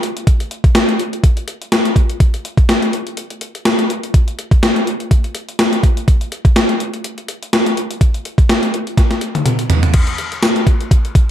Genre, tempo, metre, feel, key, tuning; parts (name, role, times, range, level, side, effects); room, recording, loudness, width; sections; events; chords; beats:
pop; 124 BPM; 4/4; swing 55% on 16ths
gated 80s digital drum machine; drums; 0.0-11.3 s; crash cymbal, hi-hat, kick drum, snare drum, tambourine, toms; -13 LUFS; equal; gated reverb, gated reverb snare, overdrive
moderate digital room reverb, RT60 1.3 s; dark, warm production; -13 LUFS; side -11 dB against mid
0.0-9.9 A section; 9.9-11.3 B section
drum fill 9.0-9.9
| 0.27 0.75 1.24 1.72 | 2.20 2.69 3.17 3.65 | 4.14 4.62 5.11 5.59 | 6.07 6.56 7.04 7.53 | 8.01 8.49 8.98 9.46 | 9.95 10.43 10.91